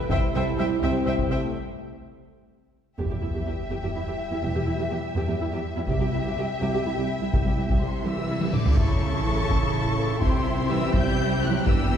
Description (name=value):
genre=cinematic, epic orchestral film score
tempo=83 BPM (dotted quarters)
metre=6/8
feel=straight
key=unclear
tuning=A4 = 440 Hz
part: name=dark symphonic violin section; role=melody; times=0.0-12.0 s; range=G4 to G6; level=-35 LUFS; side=left 4 dB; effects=none
part: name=rich symphonic violin section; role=second line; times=0.1-12.0 s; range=G4 to A5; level=-33 LUFS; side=left 2 dB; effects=none
part: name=warm symphonic viola section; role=accompaniment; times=0.1-12.0 s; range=B3 to E5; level=-32 LUFS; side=equal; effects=none
part: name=dark trombone section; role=sustained chords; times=0.1-1.5, 9.2-11.5 s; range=E3 to E4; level=-34 LUFS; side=right 3 dB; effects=none
part: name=mellow French horn section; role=sustained chords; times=0.1-11.5 s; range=G3 to A4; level=-34 LUFS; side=equal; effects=none
part: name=rich symphonic cello section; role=bass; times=0.1-12.0 s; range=C2 to G3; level=-29 LUFS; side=right 2 dB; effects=none
part: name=rich symphonic double bass section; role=bass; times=0.1-12.0 s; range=E1 to C2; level=-31 LUFS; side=right 2 dB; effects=none
part: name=taiko ensemble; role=drums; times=0.1-12.0 s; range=none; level=-26 LUFS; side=equal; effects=none
part: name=sub drop and cymbal swell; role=sound effects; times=3.0-4.4, 8.3-10.2 s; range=none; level=-34 LUFS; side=equal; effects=none
part: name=rich symphonic string section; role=sustained chords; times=8.8-12.0 s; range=D4 to A5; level=-33 LUFS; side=left 1 dB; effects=none
room=wet scoring stage reverb, RT60 1.9 s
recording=heard from further back in the room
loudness=-22 LUFS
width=side -9 dB against mid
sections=0.0-3.0 A section; 3.0-8.8 B section; 8.8-12.0 C section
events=break 1.5-3.0; drum fill 2.6-3.0, 8.4-8.8; impact 3.0-4.4, 8.8-10.2; cymbal swell 8.3-8.8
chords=0.1 C; 3.0 Em; 5.9 C; 8.8 A; 10.2 C